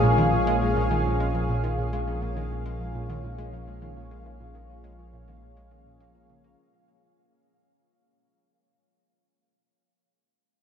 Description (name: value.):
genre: ambient, sequencer-driven space music.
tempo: 103 BPM.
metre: 4/4.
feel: straight.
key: Bb minor.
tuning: A4 = 440 Hz.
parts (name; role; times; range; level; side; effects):
lush unison pad; sustained chords; 0.0-6.6 s; F3 to Db5; -28 LUFS; left 1 dB; chorus.
concert harp; arpeggios; 0.0-9.5 s; Ab3 to Bb4; -36 LUFS; equal; none.
analog pluck; riff; 0.0-6.5 s; Bb2 to Bb3; -30 LUFS; right 2 dB; chorus, tape echo.
fat analog bass; bass; 0.0-6.6 s; Bb1; -30 LUFS; equal; none.
bubbling stepped-filter texture; texture; 0.0-6.6 s; F5; -34 LUFS; left 2 dB; chorus, built-in reverb.
room: wet huge ambient reverb, RT60 7.7 s.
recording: dark, warm production.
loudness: -24 LUFS.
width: side -8 dB against mid.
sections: 0.0-6.6 A section.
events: fade-out on synth arpeggio sound 0.0-6.6; fade-out 0.0-6.6.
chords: 0.0 Bbm7.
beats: 0.18 0.76 1.34 | 1.93 2.51 3.09 3.67 | 4.26 4.84 5.42 6.00.